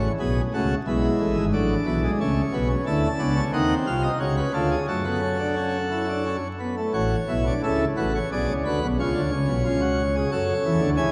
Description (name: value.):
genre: classical, baroque-style 4-part fugue for pipe organ.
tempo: 89 BPM.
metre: 3/4.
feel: straight.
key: F# minor.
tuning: A4 = 439 Hz.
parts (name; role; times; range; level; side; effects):
pipe organ, plenum; solo; 0.0-11.1 s; G#1 to A5; -24 LUFS; equal; none.
room: wet church reverb, RT60 3.6 s.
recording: dark, warm production, vinyl crackle.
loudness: -24 LUFS.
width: mono.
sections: 0.0-7.0 A section; 7.0-11.1 B section.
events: none.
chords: 0.2 B5; 0.9 E7; 2.2 A/C#; 2.9 D5; 3.5 Cmadd11; 4.2 C#; 4.9 F#m; 7.0 F#m/A; 8.3 G#m7b5/B; 9.0 C#; 10.3 F#m.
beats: 0.20 | 0.87 1.54 2.20 | 2.87 3.53 4.20 | 4.88 5.57 6.26 | 6.95 7.63 8.31 | 8.98 9.66 10.33 | 10.99.